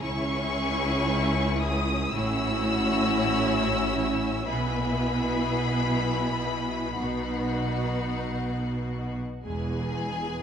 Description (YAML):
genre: classical, slow romantic movement for string orchestra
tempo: 47-58 BPM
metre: 4/4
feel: rubato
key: E major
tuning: A4 = 439 Hz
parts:
  - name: clear studio violin section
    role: melody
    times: 0.0-10.4 s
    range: G#5 to E6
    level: -32 LUFS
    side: left 2 dB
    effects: none
  - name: clear chamber violin section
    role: second line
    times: 0.0-10.4 s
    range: F#4 to F#5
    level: -34 LUFS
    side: left 4 dB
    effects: none
  - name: rich symphonic viola section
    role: accompaniment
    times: 0.0-10.4 s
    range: G#3 to G#4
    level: -29 LUFS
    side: right 1 dB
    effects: none
  - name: clear symphonic double bass section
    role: bass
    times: 0.0-10.4 s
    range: E1 to C#2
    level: -32 LUFS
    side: right 2 dB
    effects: none
  - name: rich studio cello section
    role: bass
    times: 0.0-10.4 s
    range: C#2 to B2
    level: -31 LUFS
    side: equal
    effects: none
room: moderate scoring stage reverb, RT60 2.2 s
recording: dark, warm production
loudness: -24 LUFS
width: side -8 dB against mid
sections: 0.0-9.4 A section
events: none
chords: 0.0 C#m; 2.1 F#m7/A; 4.5 E/B; 7.0 B; 9.4 E